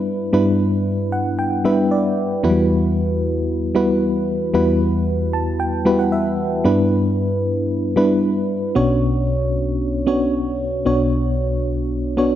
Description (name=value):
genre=pop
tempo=114 BPM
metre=4/4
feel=straight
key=B minor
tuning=A4 = 440 Hz
part: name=FM electric piano with auto-pan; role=solo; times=0.0-12.4 s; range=B1 to A5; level=-16 LUFS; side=equal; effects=none
room=moderate plate reverb, RT60 2.4 s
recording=dark, warm production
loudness=-16 LUFS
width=side -11 dB against mid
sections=0.0-10.9 A section; 10.9-12.4 B section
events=FM electric piano fill 0.9-2.4, 5.1-6.7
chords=0.0 G6; 2.4 Emadd9; 6.7 G6; 8.8 Bmadd9